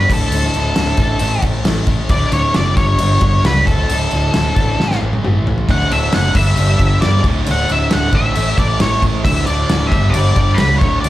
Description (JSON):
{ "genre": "quiet-loud alternative rock", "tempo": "134 BPM", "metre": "4/4", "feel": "straight", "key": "unclear", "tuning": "A4 = 435 Hz", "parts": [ { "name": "octave-fuzz lead guitar", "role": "melody", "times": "0.0-11.1 s", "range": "A4 to F#5", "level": "-19 LUFS", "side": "left 1 dB", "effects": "distortion, slapback echo" }, { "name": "fuzz guitar", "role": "riff", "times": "0.0-11.1 s", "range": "D2 to A3", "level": "-24 LUFS", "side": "right 2 dB", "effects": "distortion, slapback echo" }, { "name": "overdriven semi-hollow guitar", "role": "riff", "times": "0.0-11.1 s", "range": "D2 to A3", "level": "-24 LUFS", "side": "left 6 dB", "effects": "slapback echo" }, { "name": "overdriven fingered electric bass", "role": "bass", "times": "0.0-11.1 s", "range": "D1 to G2", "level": "-17 LUFS", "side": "equal", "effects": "none" }, { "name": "loose indie drum kit", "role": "drums", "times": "0.1-11.1 s", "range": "crash cymbal, kick drum, snare drum, toms", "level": "-18 LUFS", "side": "equal", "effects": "none" }, { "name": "distorted electric guitar", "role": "riff", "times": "5.7-11.1 s", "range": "D2 to A3", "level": "-24 LUFS", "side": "right 11 dB", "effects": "overdrive, slapback echo" } ], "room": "little or no reverb", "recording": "live gig heard through the venue's PA, club reverb", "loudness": "-12 LUFS", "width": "side -15 dB against mid", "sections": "0.0-11.1 A section", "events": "drum fill 4.8-5.7", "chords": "0.1 D5; 1.2 A5; 2.1 D; 2.8 G5; 3.7 D5; 4.8 A5; 5.7 D; 6.4 G5; 7.2 D5; 8.4 A5; 9.3 D5; 9.9 G5", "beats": "| 0.33 0.78 1.22 1.67 | 2.12 2.56 3.01 3.45 | 3.90 4.35 4.79 5.24 | 5.68 6.13 6.58 7.03 | 7.47 7.92 8.37 8.81 | 9.26 9.71 10.15 10.60 | 11.05" }